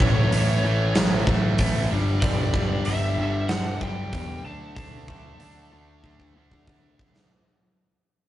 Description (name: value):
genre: hard rock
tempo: 94 BPM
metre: 4/4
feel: straight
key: unclear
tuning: A4 = 442 Hz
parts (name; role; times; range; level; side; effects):
- lead guitar through a small cranked amp; melody; 0.0-6.6 s; C#5 to A5; -32 LUFS; left 1 dB; overdrive
- biting overdriven guitar; riff; 0.0-7.3 s; G2 to D4; -32 LUFS; left 5 dB; none
- tight distorted guitar; riff; 0.0-7.3 s; G2 to D4; -31 LUFS; right 5 dB; distortion
- growling picked electric bass; bass; 0.0-7.3 s; G1 to D3; -25 LUFS; equal; overdrive
- huge arena drum kit; drums; 0.0-7.3 s; hi-hat, kick drum, snare drum; -25 LUFS; equal; none
room: light reverb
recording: rough rehearsal-room recording, nothing above 11.0 kHz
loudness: -20 LUFS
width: side -13 dB against mid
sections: 0.0-7.3 A section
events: fade-out 0.0-7.3; drum fill 6.0-7.3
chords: 0.0 A; 1.9 G5; 4.4 D5